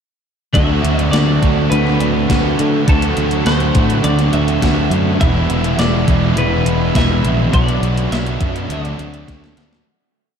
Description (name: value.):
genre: rock, shoegaze and dream pop.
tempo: 103 BPM.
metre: 4/4.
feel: straight.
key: D mixolydian.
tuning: A4 = 440 Hz.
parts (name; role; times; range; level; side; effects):
twelve-string electric guitar; melody; 0.5-9.5 s; A4 to E5; -23 LUFS; left 1 dB; lush chorus, analog delay.
overdriven semi-hollow guitar; riff; 0.5-9.9 s; E2 to F#4; -21 LUFS; right 9 dB; reverse reverb.
sludgy distorted guitar; riff; 0.5-9.9 s; B2 to F#4; -22 LUFS; equal; overdrive.
thick fuzz guitar; riff; 0.5-9.9 s; E2 to D4; -21 LUFS; left 8 dB; distortion, wide subtle chorus.
picked electric bass; bass; 0.6-9.8 s; E1 to D3; -18 LUFS; equal; none.
gated 80s digital drum machine; drums; 0.6-9.9 s; hi-hat, kick drum, snare drum; -18 LUFS; equal; gated reverb, gated reverb snare, overdrive.
room: light reverb, digital ambience.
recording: none.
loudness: -13 LUFS.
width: side -7 dB against mid.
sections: 0.6-9.9 A section.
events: fade-out 7.5-9.9; drum fill 9.3-9.9.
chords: 0.6 D9; 5.2 E7; 7.5 Bm; 8.7 D7.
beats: | 0.55 1.13 1.72 2.30 | 2.88 3.46 4.04 4.62 | 5.20 5.79 6.37 6.95 | 7.53 8.11 8.69 9.28.